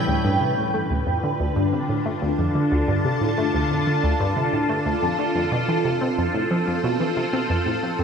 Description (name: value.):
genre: ambient, sequencer-driven space music.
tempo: 91 BPM.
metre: 4/4.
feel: straight.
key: D dorian.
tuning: A4 = 439 Hz.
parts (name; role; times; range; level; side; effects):
evolving wavetable pad; sustained chords; 0.0-8.0 s; D3 to A5; -22 LUFS; equal; ensemble chorus, built-in reverb, phaser.
concert harp; arpeggios; 0.0-2.2 s; G3 to A4; -33 LUFS; equal; auto-pan, tape echo.
analog pluck; riff; 0.0-8.0 s; D2 to C4; -24 LUFS; equal; chorus, tape echo.
room: wet lush hall reverb, RT60 2.5 s.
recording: dreamy mix soaked in reverb.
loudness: -20 LUFS.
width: side -6 dB against mid.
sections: 0.1-8.0 A section.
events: none.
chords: 0.1 Dm; 5.4 F.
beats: | 0.08 0.74 1.40 2.06 | 2.72 3.38 4.04 4.70 | 5.36 6.01 6.67 7.33 | 7.99.